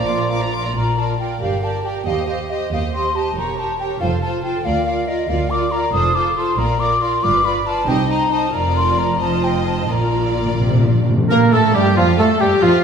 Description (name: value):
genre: quick classical-period movement for symphony orchestra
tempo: 92 BPM (dotted quarters)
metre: 6/8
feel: rubato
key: Bb major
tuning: A4 = 439 Hz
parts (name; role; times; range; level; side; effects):
- rich studio violin section; melody; 0.0-12.8 s; F4 to D6; -27 LUFS; left 3 dB; none
- dark symphonic violin section; second line; 0.0-12.8 s; F4 to F5; -27 LUFS; equal; none
- mellow clarinet; second line; 0.0-0.4, 11.3-12.7 s; F4 to D5; -24 LUFS; equal; none
- warm oboe; second line; 0.0-0.5, 11.3-12.8 s; F4 to D5; -23 LUFS; right 2 dB; none
- mellow bassoon; accompaniment; 0.0-0.5, 11.3-12.7 s; F3 to Bb3; -23 LUFS; right 2 dB; none
- warm symphonic viola section; accompaniment; 0.0-12.8 s; F3 to G4; -24 LUFS; right 3 dB; none
- mellow French horn section; sustained chords; 0.0-0.1, 11.3-12.8 s; F3 to Bb3; -26 LUFS; left 3 dB; none
- mellow hollow silver concert flute; second line; 0.1-12.7 s; Eb5 to Eb6; -21 LUFS; left 2 dB; none
- dark studio cello section; bass; 0.1-12.8 s; D2 to Bb3; -24 LUFS; right 2 dB; none
- warm studio double bass section; bass; 0.1-12.7 s; E1 to Bb2; -23 LUFS; right 1 dB; none
- timpani; percussion; 9.9-11.2 s; Bb2; -21 LUFS; left 1 dB; none
room: wet scoring stage reverb, RT60 1.9 s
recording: recorded in a church or concert hall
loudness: -15 LUFS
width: side -7 dB against mid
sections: 0.8-11.3 A section; 11.3-12.8 A section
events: timpani fill 9.9-11.3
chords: 0.0 Bb; 1.4 Gm; 2.1 Cm/Eb; 3.4 Edim7; 4.0 F; 4.7 Bb/D; 5.9 F; 6.6 Bb; 7.2 G7; 7.9 Cm; 8.5 Bb/F; 9.9 Bb; 11.3 Gmadd9; 12.0 Fadd9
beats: 0.07 | 0.76 1.42 | 2.07 2.73 | 3.37 4.01 | 4.65 5.30 | 5.94 6.59 | 7.24 7.88 | 8.54 9.21 | 9.90 10.60 | 11.30 11.96 | 12.62